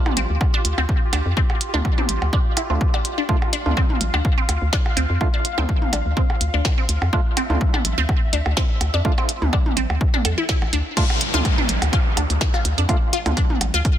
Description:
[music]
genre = minimal techno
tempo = 125 BPM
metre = 4/4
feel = swing 54% on 16ths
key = D minor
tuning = A4 = 440 Hz
[part]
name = pulsing gated texture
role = texture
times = 0.0-11.0 s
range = F4 to F5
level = -31 LUFS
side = equal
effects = chorus, built-in reverb, sidechain pumping
[part]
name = electronic toms and percussion blips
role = percussion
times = 0.1-13.7 s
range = none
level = -28 LUFS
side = right 2 dB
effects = tape echo
[part]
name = resonant blip pluck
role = riff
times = 0.2-13.8 s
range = C4 to A4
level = -26 LUFS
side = left 1 dB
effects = phaser, sidechain pumping, tape echo
[part]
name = hollow knocking FM bass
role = bass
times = 0.2-13.8 s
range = A1 to F2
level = -21 LUFS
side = equal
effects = sidechain pumping
[part]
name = minimal click drum kit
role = drums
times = 0.2-14.0 s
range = crash cymbal, hi-hat, snare drum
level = -25 LUFS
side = right 1 dB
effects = soft clipping on snare
[part]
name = electronic kick drum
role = drums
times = 0.4-14.0 s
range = none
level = -20 LUFS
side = equal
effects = none
[part]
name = percussive organ stab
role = stabs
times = 1.7-13.3 s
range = A3 to F4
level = -30 LUFS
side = right 3 dB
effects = chorus, tape echo
[part]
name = downlifter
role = sound effects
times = 11.0-14.0 s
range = none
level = -27 LUFS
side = equal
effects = none
[sound]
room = little or no reverb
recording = dense, heavily limited modern master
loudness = -18 LUFS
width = side -11 dB against mid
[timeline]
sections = 0.0-11.0 A section; 11.0-14.0 B section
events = drop 11.0-14.0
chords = 0.0 Dm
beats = 0.41 0.89 | 1.37 1.85 2.33 2.81 | 3.29 3.77 4.25 4.73 | 5.21 5.69 6.17 6.65 | 7.13 7.61 8.09 8.57 | 9.05 9.53 10.01 10.49 | 10.97 11.45 11.93 12.41 | 12.89 13.37 13.85

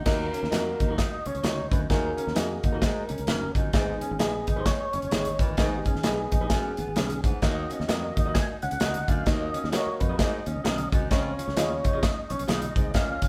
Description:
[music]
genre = uptempo 1960s-style soul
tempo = 130 BPM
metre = 4/4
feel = swing 60% on 8ths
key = unclear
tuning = A4 = 440 Hz
[part]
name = warm grand piano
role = accompaniment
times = 0.0-13.3 s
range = G#2 to D#5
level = -36 LUFS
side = equal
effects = none
[part]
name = fingered electric bass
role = bass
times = 0.0-13.2 s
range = F#1 to E#2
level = -36 LUFS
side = equal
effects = none
[part]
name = tonewheel organ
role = melody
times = 0.1-13.3 s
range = F#4 to G#5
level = -35 LUFS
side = equal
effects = overdrive, slow rotary speaker
[part]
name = electric guitar through a small old amp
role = riff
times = 0.1-13.3 s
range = B3 to D#4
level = -39 LUFS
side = equal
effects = none
[part]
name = warm baritone saxophone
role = riff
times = 0.1-13.2 s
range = D#2 to A#2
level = -39 LUFS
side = equal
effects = none
[part]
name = natural country drum kit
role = drums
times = 0.1-13.3 s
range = crash cymbal, hi-hat, kick drum, snare drum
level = -29 LUFS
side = equal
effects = none
[part]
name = congas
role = percussion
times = 0.1-13.3 s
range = none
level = -44 LUFS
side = equal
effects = none
[part]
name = electric guitar through a small old amp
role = stabs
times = 0.5-12.6 s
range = D#4 to D#5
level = -38 LUFS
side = equal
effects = none
[sound]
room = moderate stone room reverb, RT60 1.0 s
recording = band playing live in one room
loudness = -26 LUFS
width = mono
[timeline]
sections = 0.1-13.3 A section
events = none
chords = 0.1 D#m; 3.7 G#m; 7.4 D#m; 11.1 C#add9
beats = | 0.06 0.52 0.98 1.44 | 1.90 2.36 2.82 3.28 | 3.74 4.20 4.66 5.12 | 5.58 6.04 6.50 6.96 | 7.42 7.88 8.35 8.80 | 9.27 9.73 10.19 10.65 | 11.11 11.57 12.03 12.49 | 12.95

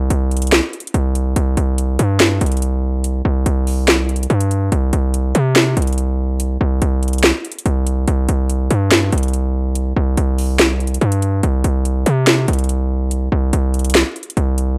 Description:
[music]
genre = hip hop, trap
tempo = 143 BPM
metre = 4/4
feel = half-time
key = unclear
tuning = A4 = 438 Hz
[part]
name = distorted 808-style bass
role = bass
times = 0.0-14.8 s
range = C2 to C3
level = -18 LUFS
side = equal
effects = distortion
[part]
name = trap drum kit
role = drums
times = 0.1-14.7 s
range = handclaps, hi-hat, snare drum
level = -18 LUFS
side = equal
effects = none
[sound]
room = digital ambience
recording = dry, gritty hardware recording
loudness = -17 LUFS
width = mono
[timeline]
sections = 0.0-14.8 A section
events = none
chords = none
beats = 0.10 0.52 0.94 | 1.36 1.78 2.20 2.62 | 3.04 3.46 3.88 4.30 | 4.72 5.14 5.56 5.98 | 6.40 6.82 7.24 7.66 | 8.08 8.50 8.91 9.34 | 9.75 10.17 10.59 11.01 | 11.43 11.85 12.27 12.69 | 13.11 13.53 13.95 14.37

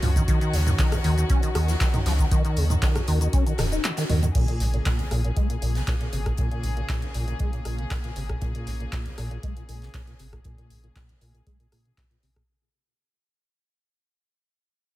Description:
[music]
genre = acid house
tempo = 118 BPM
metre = 4/4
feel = straight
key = Bb minor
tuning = A4 = 442 Hz
[part]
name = clear studio string section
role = sustained chords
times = 0.0-12.4 s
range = Db3 to Ab4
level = -34 LUFS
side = left 2 dB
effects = sidechain pumping
[part]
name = deep acid bass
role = riff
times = 0.0-12.4 s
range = Bb1 to Eb4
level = -29 LUFS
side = equal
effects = overdrive, ensemble chorus, analog delay
[part]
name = warm sub bass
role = bass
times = 0.0-12.4 s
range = Eb1 to Bb2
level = -25 LUFS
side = equal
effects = sidechain pumping
[part]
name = gated 80s drum kit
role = drums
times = 0.0-12.4 s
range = hi-hat, snare drum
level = -39 LUFS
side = right 2 dB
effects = high-pass filter on hats, high-pass filter on snare, high-pass filter on room, analog delay
[part]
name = punchy analog drum machine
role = drums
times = 0.0-12.5 s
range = cabasa, crash cymbal, handclaps, hi-hat, rim click, toms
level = -31 LUFS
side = equal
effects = overdrive
[part]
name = electronic kick drum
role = drums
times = 0.2-12.5 s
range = none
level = -25 LUFS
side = equal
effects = none
[sound]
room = studio ambience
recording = echo-heavy mix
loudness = -22 LUFS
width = side -16 dB against mid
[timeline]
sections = 0.0-4.3 A section; 4.3-12.5 B section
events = drop 0.0-4.3; kick drops out 3.8-4.3; fade-out 4.3-12.5; filter sweep on acid bass 4.3-12.5; filter sweep on sub bass 4.3-12.5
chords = 0.0 Ebm7; 4.3 Bbm7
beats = | 0.28 0.79 1.30 1.81 | 2.31 2.82 3.33 3.84 | 4.35 4.86 5.37 5.87 | 6.38 6.89 7.40 7.91 | 8.42 8.93 9.43 9.94 | 10.45 10.96 11.47 11.98

